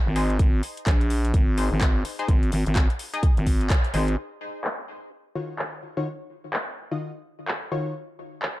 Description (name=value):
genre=bass house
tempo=127 BPM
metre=4/4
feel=swing 61% on 16ths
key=Eb dorian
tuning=A4 = 436 Hz
part: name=growling FM bass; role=bass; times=0.1-4.2 s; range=Ab1 to Bb1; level=-23 LUFS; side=equal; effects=overdrive, sidechain pumping
part: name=band-passed chord stab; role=stabs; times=0.2-7.9 s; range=Eb3 to Eb5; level=-32 LUFS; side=left 3 dB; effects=chorus, sidechain pumping, tape echo
part: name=garage drum kit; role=drums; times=0.2-8.5 s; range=handclaps, hi-hat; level=-30 LUFS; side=equal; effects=low-pass filter on snare, low-pass filter on hats
part: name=electronic kick drum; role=drums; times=0.4-3.8 s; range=none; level=-20 LUFS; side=equal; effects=none
room=digital ambience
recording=dark, warm production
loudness=-22 LUFS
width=side -16 dB against mid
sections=0.0-4.2 A section; 4.2-8.6 B section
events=band accent 3.7; filter sweep on drum 4.2-8.6; filter sweep on synth stab 4.2-8.6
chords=0.0 Ab; 4.2 Ebm7